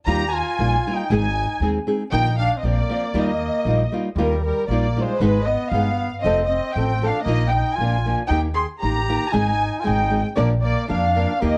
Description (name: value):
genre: mexican folk, mariachi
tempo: 116 BPM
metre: 2/4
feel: straight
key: Eb major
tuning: A4 = 440 Hz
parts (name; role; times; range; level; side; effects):
- dark studio violin section; melody; 0.1-11.6 s; Bb4 to C6; -25 LUFS; equal; analog delay
- mellow trumpet; second line; 0.1-11.6 s; G3 to Ab4; -31 LUFS; equal; none
- nylon-string guitar; accompaniment; 0.1-11.6 s; F2 to Bb4; -26 LUFS; equal; none
- upright bass; bass; 0.1-11.6 s; F1 to F2; -25 LUFS; equal; none
room: light reverb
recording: cassette tape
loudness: -21 LUFS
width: mono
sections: 0.0-4.2 A section; 4.2-11.6 B section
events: none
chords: 0.1 Ebadd9; 1.1 Ab; 2.1 Bbsus4; 2.6 Bbadd9; 3.1 Ebadd9; 5.2 Abm; 6.2 F; 7.3 Bbsus4; 7.8 Bb; 8.3 Eb; 9.3 Ab; 10.4 Bb